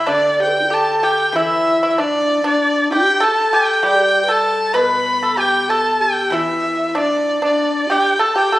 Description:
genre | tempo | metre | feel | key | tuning
chinese traditional, Chinese chamber ensemble | 96 BPM | 2/4 | rubato | G gong mode | A4 = 440 Hz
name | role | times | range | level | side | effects
clear erhu | melody | 0.0-8.6 s | D5 to B5 | -16 LUFS | equal | none
pipa | second line | 0.0-8.6 s | D4 to B4 | -20 LUFS | right 2 dB | none
guzheng | accompaniment | 0.0-8.2 s | B2 to G3 | -23 LUFS | right 1 dB | none
low xiao | second line | 0.4-8.6 s | D4 to B4 | -22 LUFS | left 3 dB | none
room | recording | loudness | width
moderate recital hall reverb, RT60 1.6 s | recorded on a phone in the room, studio reverb, compression | -14 LUFS | side -16 dB against mid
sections
0.0-1.4 A section; 1.4-8.6 B section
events
none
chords
none

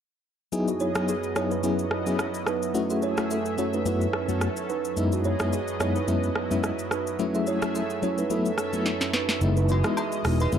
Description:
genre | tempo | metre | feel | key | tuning
afrobeats | 108 BPM | 4/4 | swing 55% on 16ths | unclear | A4 = 439 Hz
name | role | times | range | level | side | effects
FM electric piano with tremolo | accompaniment | 0.5-10.6 s | F#2 to G#4 | -27 LUFS | left 3 dB | none
lush unison pad | sustained chords | 0.5-10.6 s | F#2 to E5 | -32 LUFS | right 1 dB | chorus
afro-pop drum kit | drums | 0.5-10.6 s | hi-hat, rim click, shaker, snare drum | -31 LUFS | equal | none
kalimba | riff | 0.7-10.5 s | D#4 to E5 | -30 LUFS | right 6 dB | ping-pong delay
fingered electric bass | bass | 9.4-10.6 s | E1 to F#1 | -22 LUFS | equal | none
agogo bells and woodblock | percussion | 9.7-10.5 s | none | -33 LUFS | left 3 dB | none
room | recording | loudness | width
light reverb | dark, warm production | -24 LUFS | side -8 dB against mid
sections
0.5-9.4 A section; 9.4-10.6 B section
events
drum fill 8.9-9.4; kick muted 9.4-10.6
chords
0.5 Emaj7/F#; 2.7 F#m7; 3.9 B7sus4/F#; 5.0 Emaj7/F#; 7.2 F#m7; 8.3 B7sus4/F#; 9.4 Emaj7/F#

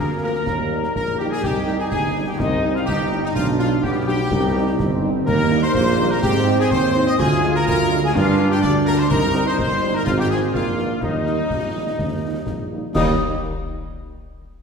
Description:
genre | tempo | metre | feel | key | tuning
military-style march for wind band | 125 BPM | 2/4 | straight | Eb major | A4 = 439 Hz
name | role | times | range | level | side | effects
clear trumpet section | melody | 0.0-13.1 s | Eb4 to Eb5 | -27 LUFS | left 2 dB | none
clear woodwind section | second line | 0.0-13.1 s | Eb4 to Eb5 | -27 LUFS | left 2 dB | none
mellow hollow piccolo | second line | 0.0-13.2 s | Eb5 to Eb6 | -27 LUFS | left 2 dB | none
dark trombone section | sustained chords | 0.0-13.1 s | G3 to F4 | -24 LUFS | right 3 dB | none
mellow tuba | bass | 0.0-13.1 s | G1 to Ab2 | -22 LUFS | right 1 dB | none
mellow French horn section | accompaniment | 0.2-13.1 s | F3 to F4 | -29 LUFS | left 1 dB | none
concert snare drum, concert bass drum and clash cymbals | drums | 0.5-13.2 s | none | -28 LUFS | left 2 dB | none
room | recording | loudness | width
wet concert hall reverb, RT60 2.1 s | heard from further back in the room | -17 LUFS | side -6 dB against mid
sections
0.0-12.9 A section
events
none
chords
0.5 Eb; 1.4 Cm; 3.3 G/B; 4.3 Cm; 5.3 Eb; 6.2 Ab; 7.2 Ddim; 8.1 Gm; 9.1 Cm; 10.1 Fm7/Ab; 10.5 Bb7b9; 11.0 Eb

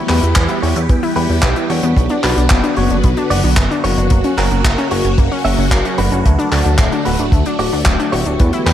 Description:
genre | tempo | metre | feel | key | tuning
italo disco | 112 BPM | 4/4 | straight | unclear | A4 = 440 Hz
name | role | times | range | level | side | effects
phased string machine | sustained chords | 0.0-8.7 s | C#3 to G4 | -20 LUFS | equal | ensemble chorus, phaser
wide unison pluck | arpeggios | 0.0-8.7 s | A3 to G5 | -21 LUFS | left 4 dB | cassette tape, digital delay
direct-recorded clean electric guitar | stabs | 0.0-8.7 s | A3 to E5 | -22 LUFS | right 2 dB | none
chorused synth bass | bass | 0.1-8.7 s | D1 to E2 | -17 LUFS | equal | tube saturation
damped 70s drum kit | drums | 0.1-8.7 s | handclaps, hi-hat | -20 LUFS | equal | studio ambience, gated reverb
kick drum | drums | 0.4-8.5 s | none | -14 LUFS | equal | studio ambience
room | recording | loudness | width
small room reverb | none | -12 LUFS | side -11 dB against mid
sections
0.0-8.7 A section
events
none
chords
0.0 Em; 2.0 Bm; 4.1 F#; 6.3 D

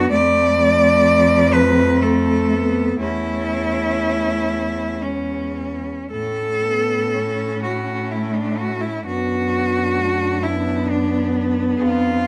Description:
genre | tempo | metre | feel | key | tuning
classical, lyrical piece for cello ensemble | 53-66 BPM | 3/4 | rubato | unclear | A4 = 440 Hz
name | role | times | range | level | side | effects
rich cello | melody | 0.0-12.3 s | C#4 to D5 | -22 LUFS | equal | none
rich cello | second line | 0.0-12.3 s | F3 to C#4 | -27 LUFS | equal | none
rich cello | accompaniment | 0.0-12.3 s | G#3 to D4 | -29 LUFS | equal | none
warm cello | bass | 0.0-12.3 s | E2 to A2 | -25 LUFS | equal | none
room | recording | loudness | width
light reverb | none | -19 LUFS | mono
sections
0.0-12.3 A section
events
none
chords
0.1 Dm/F; 3.0 A/E; 5.0 E; 6.1 A; 9.1 D/F#

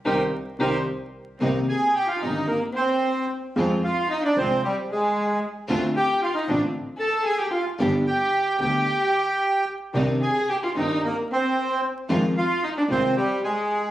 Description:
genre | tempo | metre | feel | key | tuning
tango | 112 BPM | 4/4 | rubato | C minor | A4 = 440 Hz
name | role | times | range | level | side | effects
bandoneon | melody | 0.1-13.9 s | G3 to A5 | -24 LUFS | right 2 dB | plate reverb
warm violin | second line | 0.1-13.9 s | G3 to A4 | -27 LUFS | left 2 dB | none
warm concert grand piano | accompaniment | 0.1-13.1 s | G1 to Ab4 | -26 LUFS | left 1 dB | none
bright double bass | bass | 0.1-13.1 s | G1 to F2 | -30 LUFS | right 1 dB | none
bright studio string section | stabs | 1.4-13.1 s | Ab3 to G4 | -31 LUFS | right 2 dB | none
room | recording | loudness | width
wet large studio reverb, RT60 0.9 s | recorded on a phone in the room, studio reverb, vinyl crackle, faint mains hum | -21 LUFS | side -14 dB against mid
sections
0.0-1.4 A section; 1.4-13.9 A section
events
band accent 0.0-1.4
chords
0.0 Cm7; 3.6 Fm; 5.7 Dm7; 7.8 G; 9.9 Cmadd9; 12.1 Fm7

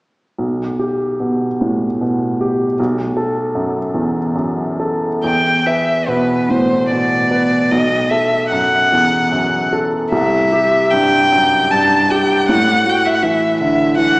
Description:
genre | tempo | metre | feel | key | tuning
classical, romantic duo for violin and grand piano | 74 BPM | 3/4 | uneven beats, rubato | E minor | A4 = 440 Hz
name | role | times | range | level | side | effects
clear baby grand piano | accompaniment | 0.4-14.2 s | B1 to B4 | -16 LUFS | equal | none
rich violin | melody | 5.2-14.2 s | B4 to A5 | -14 LUFS | equal | none
room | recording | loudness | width
wet concert hall reverb, RT60 1.7 s | heard from further back in the room, small speaker sound | -13 LUFS | side -23 dB against mid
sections
0.4-5.2 A section; 5.2-14.2 B section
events
none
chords
0.4 Gadd9/B; 2.8 B5; 5.2 E5; 7.7 B5; 10.1 C; 12.5 E9sus4/A

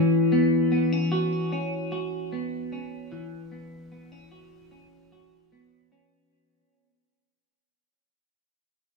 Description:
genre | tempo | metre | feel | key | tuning
dream pop | 75 BPM | 4/4 | straight | unclear | A4 = 441 Hz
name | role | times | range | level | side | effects
clean electric guitar | arpeggios | 0.0-6.9 s | E3 to F#4 | -24 LUFS | left 1 dB | wide subtle chorus, digital delay
room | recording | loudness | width
wet studio reverb, RT60 0.6 s | rough home demo mix, small room ambience | -23 LUFS | side -2 dB against mid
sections
0.0-6.3 A section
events
fade-out 0.0-6.3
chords
0.0 Bsus24/E

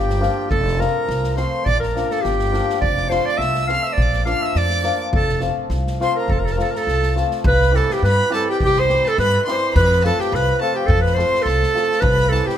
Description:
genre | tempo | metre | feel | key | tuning
balkan folk, Balkan wedding band | 104 BPM | 2/4 | swing 54% on 16ths | F major, C major from 7.4 s | A4 = 439 Hz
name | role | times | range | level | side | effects
clear clarinet | melody | 0.0-12.6 s | G4 to F5 | -20 LUFS | right 1 dB | none
rich violin | second line | 0.0-12.6 s | G5 to F6 | -27 LUFS | left 2 dB | none
hammered dulcimer | accompaniment | 0.0-12.6 s | E3 to A4 | -24 LUFS | left 4 dB | none
upright bass | bass | 0.0-12.4 s | F1 to G2 | -21 LUFS | equal | none
street-band drum kit | percussion | 0.1-12.6 s | kick drum, snare drum | -26 LUFS | equal | none
room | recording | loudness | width
light reverb | close, detailed microphones | -16 LUFS | side -10 dB against mid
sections
0.0-7.4 A section; 7.4-12.6 B section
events
none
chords
0.0 Bb; 0.5 F; 1.7 Bb; 2.8 F; 4.0 Bb; 5.1 F; 7.4 C; 9.7 F; 12.0 C

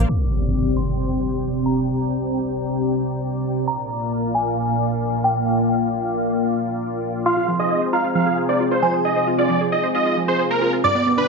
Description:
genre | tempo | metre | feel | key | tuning
trance | 134 BPM | 4/4 | straight | unclear | A4 = 439 Hz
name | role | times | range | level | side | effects
analog string pad | sustained chords | 0.0-11.3 s | Bb2 to G5 | -22 LUFS | left 1 dB | ensemble chorus
wide unison pluck | arpeggios | 0.0-0.1, 7.3-11.2 s | G2 to C5 | -24 LUFS | right 4 dB | ping-pong delay
glassy synth bell | second line | 0.1-11.3 s | G5 to D6 | -25 LUFS | left 1 dB | chorus, tape echo
impact and riser | sound effects | 0.1-1.9, 11.1-11.3 s | none | -24 LUFS | equal | none
dense compressed supersaw | melody | 7.3-11.3 s | Bb4 to F5 | -20 LUFS | right 1 dB | vintage 12-bit sampler grit
room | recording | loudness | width
moderate digital room reverb, RT60 1.2 s | dark, warm production, low-pass filter | -18 LUFS | side -4 dB against mid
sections
0.1-11.3 A section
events
impact 0.1-1.9; filter sweep on analog synth pad 0.1-11.3; filter sweep 0.1-11.3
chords
0.1 Csus2; 3.7 Bb; 7.3 Fm

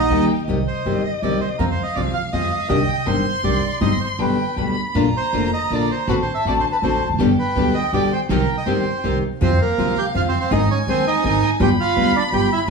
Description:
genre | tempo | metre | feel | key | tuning
tango | 162 BPM | 3/4 | rubato | C minor, F minor from 9.4 s | A4 = 440 Hz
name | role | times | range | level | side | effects
bandoneon | melody | 0.0-12.6 s | Bb3 to G5 | -22 LUFS | right 5 dB | plate reverb
dark violin | second line | 0.0-12.7 s | Eb5 to C6 | -25 LUFS | left 1 dB | none
bright studio string section | stabs | 0.0-0.5, 4.9-9.2 s | Bb3 to G4 | -27 LUFS | right 4 dB | slapback echo
upright bass | bass | 0.0-12.7 s | E1 to F2 | -23 LUFS | right 2 dB | none
nylon-string guitar | accompaniment | 0.1-12.7 s | B2 to Ab4 | -22 LUFS | left 5 dB | none
room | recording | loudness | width
moderate studio reverb, RT60 0.7 s | small room reverb | -17 LUFS | side -4 dB against mid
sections
0.5-9.4 A section; 9.4-12.7 B section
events
none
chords
0.5 Cm; 1.6 Fm; 2.7 Cmadd9; 3.8 Cm/G; 4.2 G; 4.9 Bb; 6.1 D7/A; 7.2 G; 8.3 Cm; 9.4 Fm; 10.5 Ab; 11.6 G7

